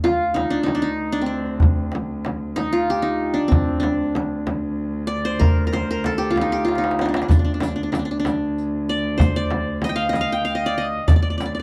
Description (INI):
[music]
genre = Arabic maqam ensemble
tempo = 63 BPM (dotted quarters)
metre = 6/8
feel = straight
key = D maqam kurd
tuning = A4 = 440 Hz
[part]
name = qanun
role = melody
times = 0.0-11.6 s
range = C4 to G5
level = -24 LUFS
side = equal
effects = none
[part]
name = muted cello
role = drone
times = 0.0-11.6 s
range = D2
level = -31 LUFS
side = equal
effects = none
[part]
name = darbuka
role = percussion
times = 0.0-11.6 s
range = none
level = -24 LUFS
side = equal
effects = none
[part]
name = frame drum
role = percussion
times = 0.1-11.6 s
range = none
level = -25 LUFS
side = equal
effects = none
[part]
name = riq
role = percussion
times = 7.3-11.6 s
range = none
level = -38 LUFS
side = equal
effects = none
[sound]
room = wet small room ambience, RT60 0.5 s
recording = dark, warm production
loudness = -21 LUFS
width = mono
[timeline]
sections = 0.0-11.6 A section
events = drum fill 6.7-7.3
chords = none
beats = 0.68 | 1.62 2.57 | 3.52 4.47 | 5.42 6.37 | 7.31 8.26 | 9.21 10.16 | 11.11